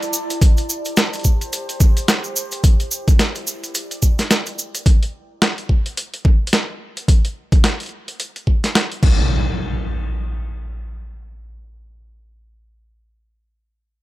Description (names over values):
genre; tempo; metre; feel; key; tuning
glitch hop; 108 BPM; 4/4; swing 58% on 16ths; unclear; A4 = 444 Hz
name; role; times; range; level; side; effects
boom bap sampler-style drum kit; drums; 0.0-9.2 s; crash cymbal, hi-hat, snare drum; -20 LUFS; equal; studio reverb
cabasa; percussion; 0.0-4.8 s; none; -25 LUFS; right 2 dB; none
warbly tape-like pad; texture; 0.0-4.9 s; E4 to A5; -30 LUFS; right 1 dB; chorus, built-in reverb, sidechain pumping
electronic kick drum; drums; 0.4-9.2 s; none; -13 LUFS; equal; overdrive, studio reverb
impact; sound effects; 9.0-12.6 s; none; -22 LUFS; equal; none
room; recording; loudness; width
little or no reverb; none; -16 LUFS; side -17 dB against mid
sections
0.0-9.3 A section; 9.3-11.5 B section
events
fade-out on ambient pad 0.0-4.9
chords
0.4 Am7; 2.6 Em7; 4.9 N.C.